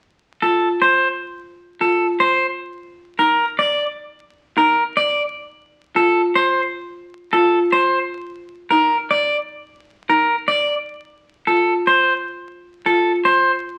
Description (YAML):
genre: classical, minimalist pattern music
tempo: free time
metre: none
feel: none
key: unclear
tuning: A4 = 441 Hz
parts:
  - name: clean electric guitar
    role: melody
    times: 0.4-13.5 s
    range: A4 to D5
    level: -19 LUFS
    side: equal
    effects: none
  - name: marimba with soft mallets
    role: arpeggios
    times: 0.4-13.1 s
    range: Eb4 to F4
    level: -24 LUFS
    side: equal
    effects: none
room: wet large studio reverb, RT60 0.9 s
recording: very old 78 rpm record, vinyl crackle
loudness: -18 LUFS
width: mono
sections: 0.0-13.8 A section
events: none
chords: 0.0 F; 2.4 Eb5; 5.2 N.C.; 7.9 Eb5; 10.7 N.C.